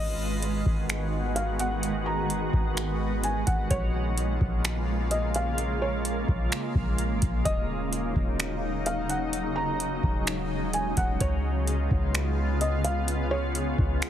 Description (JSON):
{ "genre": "hip hop, atmospheric cloud-rap", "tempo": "128 BPM", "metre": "4/4", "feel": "half-time", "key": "G# dorian", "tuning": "A4 = 440 Hz", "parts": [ { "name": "felt-muted upright piano", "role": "melody", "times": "0.0-14.0 s", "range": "C#5 to A#5", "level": "-33 LUFS", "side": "right 1 dB", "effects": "low-pass filter, digital delay" }, { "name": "shimmering ambient pad", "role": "sustained chords", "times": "0.0-14.1 s", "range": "C#3 to F#4", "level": "-30 LUFS", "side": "equal", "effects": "chorus, built-in reverb, sidechain pumping" }, { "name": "warm 808-style bass", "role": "bass", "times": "0.0-14.0 s", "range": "D#1 to C#2", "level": "-29 LUFS", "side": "equal", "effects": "none" }, { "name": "booming analog drum machine", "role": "drums", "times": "0.4-14.1 s", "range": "finger snaps, hi-hat, kick drum", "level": "-29 LUFS", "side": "equal", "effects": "none" } ], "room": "little or no reverb", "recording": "heavily compressed radio sound", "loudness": "-25 LUFS", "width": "side -10 dB against mid", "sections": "0.0-14.1 A section", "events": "none", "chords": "0.0 G#m7; 3.7 A#m7; 7.5 D#m7; 11.2 C#7" }